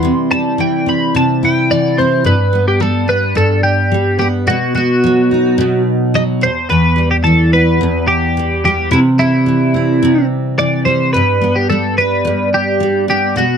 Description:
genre	pop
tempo	108 BPM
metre	4/4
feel	straight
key	G major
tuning	A4 = 440 Hz
part	twelve-string electric guitar	melody	0.0-13.6 s	E4 to C6	-15 LUFS	equal	analog chorus
part	picked steel-string acoustic guitar	accompaniment	0.0-13.6 s	E2 to E4	-13 LUFS	equal	double-tracked left and right
room	moderate studio reverb, RT60 0.6 s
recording	dark, warm production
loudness	-11 LUFS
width	side -7 dB against mid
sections	0.0-2.2 A section; 2.2-13.6 B section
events	none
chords	0.0 C; 2.2 G; 4.5 B; 6.4 Em; 8.9 C; 11.1 G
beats	| 0.03 0.58 1.14 1.69 | 2.25 2.80 3.36 3.91 | 4.47 5.02 5.58 6.13 | 6.69 7.24 7.80 8.35 | 8.91 9.46 10.02 10.57 | 11.13 11.68 12.24 12.79 | 13.35

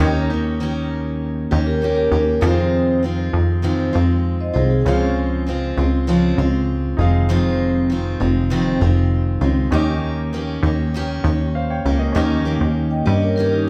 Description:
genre	acoustic pop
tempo	99 BPM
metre	4/4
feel	straight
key	F minor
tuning	A4 = 440 Hz
part	clear concert grand piano	accompaniment	0.0-13.7 s	Db4 to G5	-33 LUFS	equal	none
part	picked steel-string acoustic guitar	accompaniment	0.0-13.7 s	F2 to G4	-23 LUFS	equal	none
part	plucky analog bass	bass	0.0-13.7 s	F1 to G2	-22 LUFS	equal	none
part	vibraphone with medium mallets	second line	1.7-5.0, 12.9-13.7 s	Eb4 to G5	-23 LUFS	equal	none
room	moderate large studio reverb, RT60 1.5 s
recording	band playing live in one room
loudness	-19 LUFS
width	mono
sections	0.0-2.4 A section; 2.4-12.2 B section; 12.2-13.7 C section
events	none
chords	0.0 Eb7; 2.4 Fm7; 4.9 Dbmaj7; 7.0 Fm7; 9.7 Eb7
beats	| 0.00 0.61 1.22 1.82 | 2.43 3.04 3.65 4.25 | 4.86 5.47 6.08 6.69 | 7.29 7.90 8.51 9.12 | 9.73 10.34 10.94 11.55 | 12.16 12.77 13.37

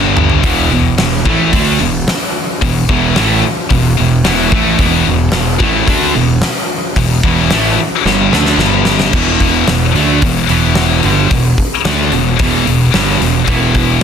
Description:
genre	hard rock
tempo	110 BPM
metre	4/4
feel	straight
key	unclear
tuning	A4 = 439 Hz
part	overdriven semi-hollow guitar	riff	0.0-14.0 s	E2 to D4	-15 LUFS	right 8 dB	none
part	scooped high-gain guitar	riff	0.0-14.0 s	E2 to D4	-14 LUFS	left 12 dB	distortion
part	fuzz fingered electric bass	bass	0.0-14.0 s	E1 to D2	-17 LUFS	equal	overdrive
part	huge arena drum kit	drums	0.2-13.9 s	crash cymbal, hi-hat, kick drum, snare drum, toms	-15 LUFS	left 1 dB	none
room	light reverb, small room ambience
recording	dense, heavily limited modern master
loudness	-10 LUFS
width	side -7 dB against mid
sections	0.0-9.1 A section; 9.1-14.0 B section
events	drum fill 0.0-0.4, 8.1-9.1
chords	0.4 E5; 8.6 G5; 9.1 E5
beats	| 0.45 0.99 1.53 2.08 | 2.62 3.17 3.71 4.25 | 4.80 5.34 5.88 6.43 | 6.97 7.51 8.05 8.60 | 9.14 9.68 10.22 10.77 | 11.31 11.85 12.39 12.94 | 13.48 14.02

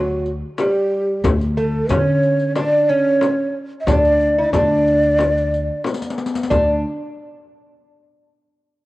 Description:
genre	Persian modal ensemble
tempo	91 BPM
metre	4/4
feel	straight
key	D dastgah chahargah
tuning	A4 = 441 Hz
part	breathy mellow ney	melody	0.0-6.8 s	F#4 to Eb5+50c	-18 LUFS	equal	cassette tape
part	lute	second line	0.0-6.8 s	F#3 to Eb4+45c	-21 LUFS	right 1 dB	cassette tape
part	upright bass	bass	0.0-6.8 s	D2 to D3	-22 LUFS	equal	none
part	riq	percussion	0.3-6.8 s	none	-28 LUFS	left 4 dB	none
part	frame drum	percussion	0.6-6.8 s	none	-24 LUFS	left 4 dB	none
part	tombak	percussion	0.6-6.8 s	none	-28 LUFS	left 1 dB	none
room	light reverb, small room ambience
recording	home recording on cassette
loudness	-15 LUFS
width	side -18 dB against mid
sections	0.0-6.5 A section; 6.5-8.8 B section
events	drum fill 5.9-6.5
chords	none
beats	0.58 | 1.24 1.90 2.56 3.22 | 3.88 4.54 5.20 5.85 | 6.51

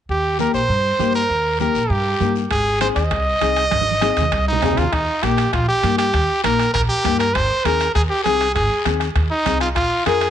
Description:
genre	latin, cumbia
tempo	198 BPM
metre	4/4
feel	straight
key	Eb major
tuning	A4 = 440 Hz
part	brilliant trumpet	melody	0.1-10.3 s	Eb4 to Eb5	-19 LUFS	right 2 dB	tape echo
part	upright bass	bass	0.1-10.3 s	Ab1 to G2	-23 LUFS	equal	none
part	congas	percussion	0.1-10.2 s	none	-30 LUFS	right 12 dB	none
part	guiro	percussion	0.1-10.3 s	none	-33 LUFS	left 14 dB	none
part	nylon-string guitar	accompaniment	0.4-10.3 s	Bb3 to Bb4	-23 LUFS	left 10 dB	none
part	bombo	percussion	2.5-10.3 s	none	-27 LUFS	left 3 dB	none
part	timbales	percussion	2.5-10.3 s	none	-29 LUFS	right 14 dB	none
room	light reverb, small room ambience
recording	1960s-style stereo with parts hard left and right, nothing above 10.7 kHz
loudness	-16 LUFS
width	side -10 dB against mid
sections	0.1-4.9 A section; 4.9-10.3 B section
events	drum fill 3.7-4.9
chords	0.1 Eb; 2.5 Ab; 4.9 Eb; 7.3 Ab; 9.8 Bb7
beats	| 0.09 0.39 0.70 1.00 | 1.30 1.60 1.91 2.21 | 2.51 2.81 3.12 3.42 | 3.72 4.02 4.33 4.63 | 4.93 5.23 5.54 5.84 | 6.14 6.44 6.75 7.05 | 7.35 7.65 7.95 8.25 | 8.56 8.86 9.16 9.46 | 9.76 10.06

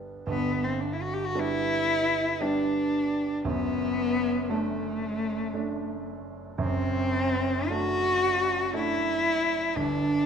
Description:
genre	classical, romantic duo for cello and grand piano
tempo	57 BPM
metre	3/4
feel	rubato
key	unclear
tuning	A4 = 440 Hz
part	clear concert grand piano	accompaniment	0.0-10.3 s	F#1 to D4	-31 LUFS	right 4 dB	none
part	rich cello	melody	0.3-10.3 s	A3 to G4	-26 LUFS	left 2 dB	none
room	moderate recital hall reverb, RT60 1.4 s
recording	none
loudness	-25 LUFS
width	side -7 dB against mid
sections	0.3-10.3 A section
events	none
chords	0.3 G; 3.4 D/F#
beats	| 0.27 1.35 2.40 | 3.45 4.49 5.54 | 6.59 7.70 8.73 | 9.76

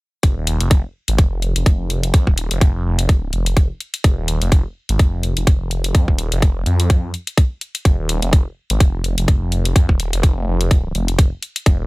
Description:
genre	bass house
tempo	126 BPM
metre	4/4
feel	swing 56% on 16ths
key	F minor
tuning	A4 = 440 Hz
part	phased detuned saw bass	bass	0.2-11.9 s	Eb1 to F2	-20 LUFS	equal	phaser, tube saturation, sidechain pumping
part	electronic hi-hat	drums	0.2-11.8 s	none	-24 LUFS	left 3 dB	none
part	electronic kick drum	drums	0.2-11.8 s	none	-13 LUFS	equal	none
room	little or no reverb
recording	none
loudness	-15 LUFS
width	side -23 dB against mid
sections	0.2-11.9 A section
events	none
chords	none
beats	| 0.23 0.71 1.19 1.66 | 2.14 2.61 3.09 3.57 | 4.04 4.52 5.00 5.47 | 5.95 6.42 6.90 7.38 | 7.85 8.33 8.80 9.28 | 9.76 10.23 10.71 11.19 | 11.66

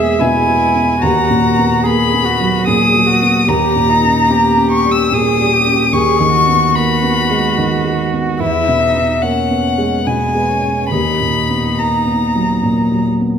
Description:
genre	neoclassical piano and strings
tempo	73 BPM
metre	3/4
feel	rubato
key	unclear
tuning	A4 = 440 Hz
part	muted violin	melody	0.0-13.1 s	E5 to E6	-15 LUFS	left 3 dB	none
part	muted cello	second line	0.0-13.1 s	B3 to G#4	-20 LUFS	right 6 dB	none
part	felt-muted upright piano	accompaniment	0.0-13.4 s	D#2 to C#4	-15 LUFS	equal	none
room	wet recital hall reverb, RT60 1.8 s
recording	recorded in a church or concert hall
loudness	-11 LUFS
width	side -7 dB against mid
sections	0.0-13.4 A section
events	none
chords	0.0 E; 1.0 Bmaj7/D#; 3.5 D#7; 5.9 G#m7/D#; 8.4 E; 10.9 Bmaj7/D#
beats	0.19 | 1.02 1.84 2.66 | 3.47 4.29 5.11 | 5.93 6.75 7.58 | 8.41 9.23 10.06 | 10.91 11.77 12.63

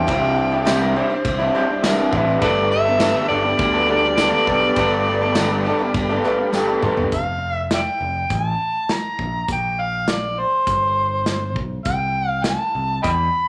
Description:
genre	folk rock and heartland rock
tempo	102 BPM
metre	4/4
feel	straight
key	C major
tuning	A4 = 444 Hz
part	overdriven harmonica	melody	0.0-13.5 s	A4 to B5	-23 LUFS	equal	none
part	picked twelve-string acoustic guitar	accompaniment	0.0-7.1 s	G2 to G4	-29 LUFS	equal	none
part	mellow tonewheel organ	sustained chords	0.0-7.1 s	A4 to D6	-34 LUFS	equal	none
part	electric guitar through a small old amp	riff	0.0-7.1 s	C3 to A4	-23 LUFS	equal	none
part	modern bright picked electric bass	bass	0.0-13.3 s	F1 to E2	-29 LUFS	equal	none
part	barky reed electric piano	accompaniment	0.1-7.1 s	E4 to C6	-31 LUFS	equal	none
part	natural country drum kit	drums	0.1-13.2 s	hi-hat, kick drum, ride cymbal, snare drum, toms	-28 LUFS	equal	none
part	electric slide guitar	second line	0.7-2.4 s	G4 to C5	-29 LUFS	equal	none
part	tambourine	percussion	0.7-6.7 s	none	-40 LUFS	equal	none
room	moderate large studio reverb, RT60 1.2 s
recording	none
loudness	-20 LUFS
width	mono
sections	0.0-7.1 A section; 7.1-13.5 B section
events	reed electric piano fill 5.9-7.1; drum fill 6.5-7.1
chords	0.0 Cadd9; 2.4 Gadd9; 7.1 F; 9.2 Bbsus2; 11.9 Cmaj7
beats	| 0.08 0.67 1.25 1.84 | 2.42 3.01 3.60 4.18 | 4.77 5.36 5.94 6.53 | 7.12 7.71 8.30 8.89 | 9.48 10.08 10.67 11.26 | 11.86 12.45 13.04

